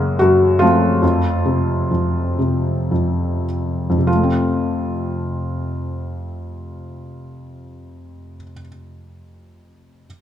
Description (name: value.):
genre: classical, lyrical solo piano.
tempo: 49-79 BPM.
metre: 3/4.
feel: rubato.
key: F major.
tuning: A4 = 440 Hz.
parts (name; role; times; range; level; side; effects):
felt-muted upright piano; solo; 0.0-10.1 s; F2 to Bb4; -17 LUFS; equal; none.
room: moderate recital hall reverb, RT60 1.5 s.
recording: dark, warm production.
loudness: -16 LUFS.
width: side -10 dB against mid.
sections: 0.0-4.1 A section; 4.1-7.5 B section.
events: slowing down 0.0-4.1.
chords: 0.0 Gbadd9; 1.0 F.